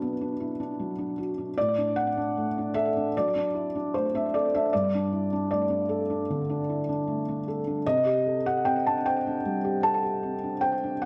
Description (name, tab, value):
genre	neoclassical minimalist piano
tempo	76 BPM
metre	4/4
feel	rubato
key	unclear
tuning	A4 = 440 Hz
part	felt-muted upright piano	solo	0.0-11.1 s	G2 to A5	-27 LUFS	equal	slapback echo
room	light reverb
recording	none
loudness	-27 LUFS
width	mono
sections	0.0-11.1 A section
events	none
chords	0.0 Bm; 1.6 D/A; 4.7 Gsus2; 7.8 Csus2